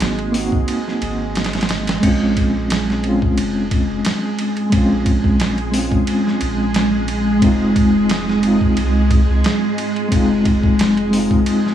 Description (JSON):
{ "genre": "trip hop", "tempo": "89 BPM", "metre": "4/4", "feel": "swing 54% on 16ths", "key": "Bb minor", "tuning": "A4 = 440 Hz", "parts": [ { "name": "mellow reed electric piano", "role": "accompaniment", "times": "0.0-11.7 s", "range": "Ab3 to Gb4", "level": "-18 LUFS", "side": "right 1 dB", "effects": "fast tremolo, vintage 12-bit sampler grit, tape echo" }, { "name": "soft dub sub bass", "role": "bass", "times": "0.0-11.4 s", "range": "F1 to C2", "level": "-23 LUFS", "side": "equal", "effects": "none" }, { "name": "boom bap sampler-style drum kit", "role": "drums", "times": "0.0-11.7 s", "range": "crash cymbal, hi-hat, kick drum, ride cymbal, snare drum", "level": "-20 LUFS", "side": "equal", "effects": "small room ambience" }, { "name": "bowed-like drone", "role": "texture", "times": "0.0-2.0 s", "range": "Ab3 to Ab4", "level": "-30 LUFS", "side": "equal", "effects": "built-in reverb" }, { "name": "string machine, cellos", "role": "sustained chords", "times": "2.0-11.7 s", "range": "Ab3 to Ab4", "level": "-20 LUFS", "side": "left 1 dB", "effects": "ensemble chorus" } ], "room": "light reverb, digital ambience", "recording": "small room ambience", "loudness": "-14 LUFS", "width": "side -10 dB against mid", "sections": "0.0-2.0 A section; 2.0-11.7 B section", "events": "none", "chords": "0.0 Ab7; 2.0 Bbm7; 7.4 Fm7" }